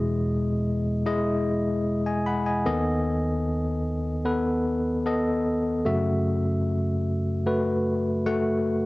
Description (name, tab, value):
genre	pop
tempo	75 BPM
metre	4/4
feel	straight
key	unclear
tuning	A4 = 440 Hz
part	barky tine electric piano	solo	0.0-8.9 s	D#2 to B5	-23 LUFS	left 1 dB	medium stereo tremolo
room	moderate spring reverb, RT60 2.2 s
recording	home recording on cassette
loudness	-23 LUFS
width	side -21 dB against mid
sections	0.0-8.9 A section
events	none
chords	0.0 Emaj7; 2.7 B7/D#; 5.9 F#m7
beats	0.26 1.06 1.86 | 2.66 3.46 4.26 5.06 | 5.86 6.66 7.46 8.26